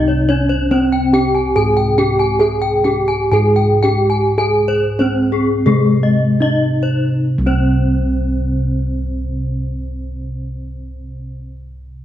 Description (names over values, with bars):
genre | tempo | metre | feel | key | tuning
Balinese gamelan | 66-142 BPM | 4/4 | straight | C pelog | A4 = 440 Hz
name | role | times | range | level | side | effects
gamelan-type bronze metallophone | melody | 0.0-11.5 s | Ab3 to Ab4 | -17 LUFS | right 1 dB | none
gamelan-type bossed gongs | bass | 0.0-11.4 s | C2 to Ab4 | -17 LUFS | equal | none
gamelan-type bronze metallophone | arpeggios | 0.1-11.5 s | Ab4 to Ab5 | -22 LUFS | left 5 dB | none
room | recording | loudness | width
light reverb | dark, warm production | -13 LUFS | side -11 dB against mid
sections
0.0-7.3 A section; 7.3-12.0 B section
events
slowing down 2.4-7.3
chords
none